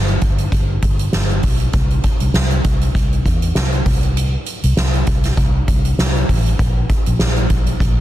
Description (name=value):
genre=piano-driven pop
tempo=99 BPM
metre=4/4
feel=swing 56% on 16ths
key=unclear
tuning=A4 = 440 Hz
part: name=vintage muted fingered electric bass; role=bass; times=0.0-8.0 s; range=G1 to E2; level=-17 LUFS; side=equal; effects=none
part: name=soft-mallet drum kit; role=drums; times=0.1-8.0 s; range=hi-hat, kick drum, snare drum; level=-17 LUFS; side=equal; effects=none
room=little or no reverb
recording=dense, heavily limited modern master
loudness=-14 LUFS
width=side -14 dB against mid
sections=0.0-8.0 A section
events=none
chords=none